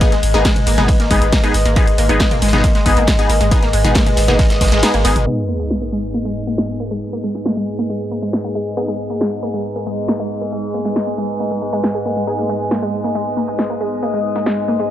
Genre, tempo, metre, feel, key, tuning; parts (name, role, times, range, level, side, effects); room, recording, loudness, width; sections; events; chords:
driving peak-time techno; 137 BPM; 4/4; straight; G# minor; A4 = 439 Hz
wide unison pluck; riff; 0.0-14.8 s; G#3 to G#4; -22 LUFS; equal; tube saturation, phaser, sidechain pumping, tape echo
supersaw stab; stabs; 0.0-14.9 s; B3 to G#4; -23 LUFS; left 2 dB; phaser, sidechain pumping, low-pass filter, tape echo
overtone-sweeping drone; drone; 0.0-14.9 s; G#2 to G#3; -26 LUFS; right 1 dB; chorus, built-in reverb, phaser, sidechain pumping
crunchy breakbeat drum kit; drums; 0.0-5.2 s; hi-hat, ride cymbal, snare drum; -28 LUFS; equal; high-pass filter on cymbals, high-pass filter on hats, high-pass filter on snare, high-pass filter on room
electronic kick drum; drums; 0.0-4.7 s; -16 LUFS; equal
punchy analog drum machine; drums; 0.0-14.6 s; hi-hat, ride cymbal, snare drum, toms; -21 LUFS; equal; overdrive, low-pass filter on hats, low-pass filter on snare, low-pass filter on cymbals, low-pass filter on toms
warbly tape-like pad; texture; 0.0-14.9 s; B4 to G#5; -23 LUFS; left 2 dB; chorus, built-in reverb, sidechain pumping
saturated sub bass; bass; 0.1-5.3 s; G#1; -18 LUFS; equal; tube saturation, sidechain pumping, low-pass filter
sub drop; sound effects; 5.3-7.0 s; -25 LUFS; equal
light reverb, digital ambience; dry, gritty hardware recording, low-pass filter, faint mains hum; -14 LUFS; side -12 dB against mid
0.0-5.3 A section; 5.3-14.9 B section
drop 0.0-5.3; kick drops out 4.8-5.3; band accent 4.8; impact 5.3-7.0; filter sweep on drum 5.3-14.9; filter sweep on synth arpeggio sound 5.3-14.9; filter sweep 5.3-14.9
0.0 G#m